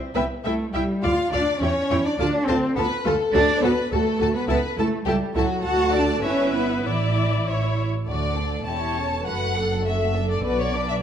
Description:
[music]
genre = quick classical-period movement for string orchestra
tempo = 102 BPM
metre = 2/4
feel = rubato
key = D major from 3.3 s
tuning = A4 = 440 Hz
[part]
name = rich chamber violin section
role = second line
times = 0.1-11.0 s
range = A3 to F#5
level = -27 LUFS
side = left 3 dB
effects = none
[part]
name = rich chamber violin section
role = melody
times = 0.2-10.9 s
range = B4 to A5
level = -31 LUFS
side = left 5 dB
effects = none
[part]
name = warm chamber viola section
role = accompaniment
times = 0.2-11.0 s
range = E4 to E5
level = -26 LUFS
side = equal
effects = none
[part]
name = warm chamber cello section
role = bass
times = 0.2-11.0 s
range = E2 to F#4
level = -25 LUFS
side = right 2 dB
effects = none
[part]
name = warm symphonic double bass section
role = bass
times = 0.2-11.0 s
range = E1 to E2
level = -27 LUFS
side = right 2 dB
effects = none
[sound]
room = moderate recital hall reverb, RT60 1.5 s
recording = dark, warm production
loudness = -20 LUFS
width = side -9 dB against mid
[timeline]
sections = 0.0-8.1 A section; 8.1-11.0 B section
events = none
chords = 0.0 C; 1.0 Dm; 1.6 C#dim; 2.2 Dm; 3.3 D; 4.5 A/C#; 5.6 D; 6.2 Em/G; 6.8 Asus4; 7.5 A; 8.1 D; 8.7 A7/E; 9.3 D/F#; 10.4 Bm

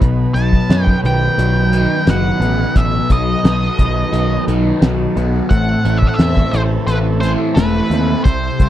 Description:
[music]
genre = psychedelic rock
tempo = 87 BPM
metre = 4/4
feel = straight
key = B phrygian dominant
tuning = A4 = 438 Hz
[part]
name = combo organ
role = sustained chords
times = 0.0-8.7 s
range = D#3 to B4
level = -26 LUFS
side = right 5 dB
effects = none
[part]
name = crunchy overdriven guitar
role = riff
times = 0.0-8.7 s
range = A2 to E4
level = -18 LUFS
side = left 1 dB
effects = phaser
[part]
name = overdriven picked electric bass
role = bass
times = 0.0-8.7 s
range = E1 to F#2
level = -17 LUFS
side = equal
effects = none
[part]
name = cloth-damped thuddy drum kit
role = drums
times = 0.0-8.7 s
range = hi-hat, kick drum, snare drum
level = -13 LUFS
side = equal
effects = none
[part]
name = octave-fuzz lead guitar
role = melody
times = 0.3-8.7 s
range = B4 to A5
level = -20 LUFS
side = equal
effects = wah, distortion, slapback echo
[sound]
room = little or no reverb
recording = dry, close 1970s-style studio recording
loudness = -12 LUFS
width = side -12 dB against mid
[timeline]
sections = 0.0-8.7 A section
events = none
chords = 0.0 B; 5.5 Am

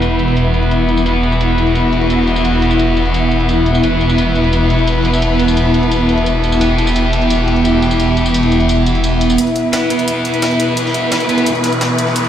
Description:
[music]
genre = dark technical drum and bass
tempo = 173 BPM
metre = 4/4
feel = straight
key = unclear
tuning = A4 = 436 Hz
[part]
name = rich symphonic string section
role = sustained chords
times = 0.0-12.3 s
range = B2 to B4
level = -19 LUFS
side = left 1 dB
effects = low-pass filter
[part]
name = thick fuzz guitar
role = stabs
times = 0.0-11.5 s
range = B3 to B4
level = -19 LUFS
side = equal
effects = distortion, vintage 12-bit sampler grit, low-pass filter, dub echo
[part]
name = phased detuned saw bass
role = bass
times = 0.0-9.4 s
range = E1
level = -16 LUFS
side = equal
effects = phaser, tube saturation
[part]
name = electronic hi-hat and tambourine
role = drums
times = 0.0-12.2 s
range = none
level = -25 LUFS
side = equal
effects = overdrive, low-pass filter on hats, low-pass filter on perc, low-pass filter on snare, low-pass filter on room
[part]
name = airy breathy pad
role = texture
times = 0.0-12.3 s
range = B3 to B5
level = -16 LUFS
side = equal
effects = chorus
[part]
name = breakbeat sampler-style drum kit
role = drums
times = 9.4-12.3 s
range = hi-hat, snare drum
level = -23 LUFS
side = equal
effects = high-pass filter on hats, high-pass filter on snare
[part]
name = riser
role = sound effects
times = 10.1-12.3 s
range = none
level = -24 LUFS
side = equal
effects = none
[sound]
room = moderate plate reverb, RT60 1.2 s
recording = played on a big sound system in a bare room, stone room reverb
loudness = -12 LUFS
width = side -10 dB against mid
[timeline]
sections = 0.0-9.4 A section; 9.4-12.3 B section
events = build-up 9.4-12.3; riser 10.1-12.3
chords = 0.0 E5

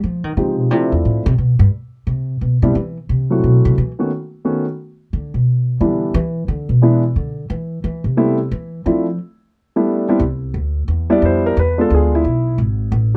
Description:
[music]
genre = jazz piano trio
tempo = 177 BPM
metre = 4/4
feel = swing 65% on 8ths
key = C major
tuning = A4 = 441 Hz
[part]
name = upright bass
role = bass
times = 0.0-13.2 s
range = G#1 to F3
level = -19 LUFS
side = equal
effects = none
[part]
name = warm concert grand piano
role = melody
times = 0.4-13.2 s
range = Eb3 to D5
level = -19 LUFS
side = equal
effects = none
[sound]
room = light reverb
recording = dark, warm production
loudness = -17 LUFS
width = mono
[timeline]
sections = 0.0-10.2 A section; 10.2-13.2 A section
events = upright bass solo 0.0-10.2; grand piano solo 10.2-13.2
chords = 0.0 Dbmaj9#11; 0.7 Dm7; 1.4 G; 2.1 Cmaj7; 4.1 B7; 4.8 Em7; 6.1 E7(no3); 7.5 Am (rootless); 8.9 Dm7; 9.5 G; 10.2 Cmaj9; 11.6 E7b9

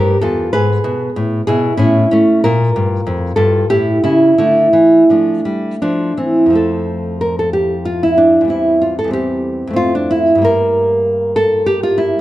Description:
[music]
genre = classical, baroque-style dance for nylon-string guitar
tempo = 78-98 BPM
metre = 3/4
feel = rubato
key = D minor, F major from 6.6 s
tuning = A4 = 440 Hz
[part]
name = nylon-string guitar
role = solo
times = 0.0-12.2 s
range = E2 to B4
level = -11 LUFS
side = equal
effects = none
[sound]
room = moderate recital hall reverb, RT60 1.4 s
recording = dark, warm production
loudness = -11 LUFS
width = side -15 dB against mid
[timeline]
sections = 0.0-6.6 A section; 6.6-12.2 A section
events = none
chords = 0.0 Edim/G; 0.5 G#m; 1.8 A; 2.4 Bb5; 3.7 A7; 4.4 Dm; 6.6 F; 8.5 C/E; 9.8 F; 10.4 Gm

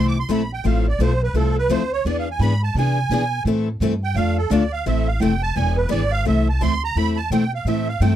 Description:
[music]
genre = acoustic string swing (jazz manouche)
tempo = 171 BPM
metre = 4/4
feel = swing 62% on 8ths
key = A minor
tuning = A4 = 437 Hz
[part]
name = musette accordion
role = melody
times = 0.0-8.2 s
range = A4 to D6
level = -24 LUFS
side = right 4 dB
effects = none
[part]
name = picked steel-string acoustic guitar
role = accompaniment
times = 0.0-8.1 s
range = D3 to A4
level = -24 LUFS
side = left 11 dB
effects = none
[part]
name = picked steel-string acoustic guitar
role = accompaniment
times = 0.0-8.1 s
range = D3 to B4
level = -25 LUFS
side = right 4 dB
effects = none
[part]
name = upright bass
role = bass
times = 0.0-8.2 s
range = E1 to C3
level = -21 LUFS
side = equal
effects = none
[sound]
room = little or no reverb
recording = dry, close 1970s-style studio recording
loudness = -18 LUFS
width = side -11 dB against mid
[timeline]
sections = 0.0-6.3 A section; 6.3-8.2 A section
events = accordion solo 0.0-8.2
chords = 0.0 Am; 0.6 Fmaj7; 2.1 E7; 3.5 Am; 4.2 Dm; 4.9 Am; 5.6 E7; 6.3 Am

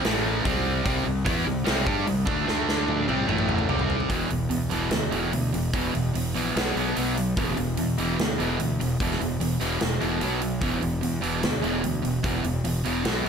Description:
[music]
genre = hard rock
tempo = 147 BPM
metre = 4/4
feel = straight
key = E minor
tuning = A4 = 442 Hz
[part]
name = cranked stack guitar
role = riff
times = 0.0-13.3 s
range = E2 to G4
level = -28 LUFS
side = right 10 dB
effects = overdrive
[part]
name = sludgy distorted guitar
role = riff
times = 0.0-13.3 s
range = E2 to G4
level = -28 LUFS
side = left 10 dB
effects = overdrive
[part]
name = fuzz fingered electric bass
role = bass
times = 0.0-13.3 s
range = E1 to G2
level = -30 LUFS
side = equal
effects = overdrive
[part]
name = big rock drum kit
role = drums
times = 0.0-13.3 s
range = hi-hat, kick drum, snare drum, toms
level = -29 LUFS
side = equal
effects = none
[sound]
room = light reverb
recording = none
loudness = -23 LUFS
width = side -6 dB against mid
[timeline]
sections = 0.0-4.1 A section; 4.1-13.3 B section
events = drum fill 2.5-4.1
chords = 0.0 A5; 0.4 C5; 2.5 D5; 3.1 C5; 3.3 A5; 3.7 C5; 4.1 E5; 6.5 B5; 7.4 E5; 10.2 B5; 10.6 E5

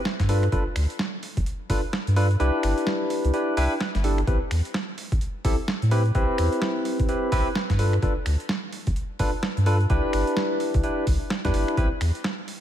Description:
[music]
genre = UK garage, two-step garage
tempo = 128 BPM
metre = 4/4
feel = swing 61% on 16ths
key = A minor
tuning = A4 = 440 Hz
[part]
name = boom bap sampler-style drum kit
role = drums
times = 0.1-12.6 s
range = finger snaps, hi-hat, snare drum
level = -31 LUFS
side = right 2 dB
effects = overdrive
[part]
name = soft dub sub bass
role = bass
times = 0.2-12.1 s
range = G1 to A2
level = -22 LUFS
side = equal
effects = none
[part]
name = electronic kick drum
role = drums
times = 0.2-11.9 s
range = none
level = -26 LUFS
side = equal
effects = overdrive
[part]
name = barky tine electric piano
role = stabs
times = 0.3-11.9 s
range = C4 to B4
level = -26 LUFS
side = left 1 dB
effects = wide subtle chorus, ping-pong delay
[sound]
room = light reverb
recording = none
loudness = -22 LUFS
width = side -11 dB against mid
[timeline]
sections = 0.0-12.6 A section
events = kick drops out 2.4-4.3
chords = 0.3 G7; 2.4 Cmaj7; 4.3 Am9; 7.8 G7; 9.9 Cmaj7; 11.8 Am9

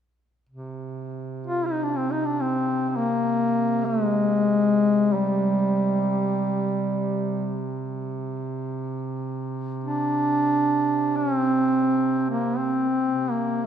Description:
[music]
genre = caucasian folk, Caucasian lament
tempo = free time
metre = none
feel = none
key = unclear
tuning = A4 = 440 Hz
[part]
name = warm duduk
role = drone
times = 0.5-13.7 s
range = C3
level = -31 LUFS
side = right 4 dB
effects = none
[part]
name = mellow duduk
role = melody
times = 1.5-13.7 s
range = G3 to F4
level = -21 LUFS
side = equal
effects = none
[sound]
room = wet church reverb, RT60 3.4 s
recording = minimal, uncompressed stereo recording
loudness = -21 LUFS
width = side -8 dB against mid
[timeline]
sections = 0.5-13.7 A section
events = none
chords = none

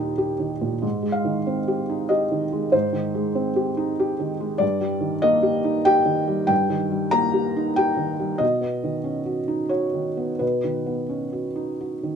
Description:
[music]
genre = neoclassical minimalist piano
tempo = 94 BPM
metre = 3/4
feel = rubato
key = Eb major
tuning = A4 = 440 Hz
[part]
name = felt-muted upright piano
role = solo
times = 0.0-12.2 s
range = Eb2 to Bb5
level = -21 LUFS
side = equal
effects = none
[sound]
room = light reverb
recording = minimal, uncompressed stereo recording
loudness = -21 LUFS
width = side -7 dB against mid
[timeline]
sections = 0.0-12.2 A section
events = none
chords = 0.0 Ebmaj7; 0.8 Abmaj7; 4.6 Ebmaj7/G; 8.4 Badd9

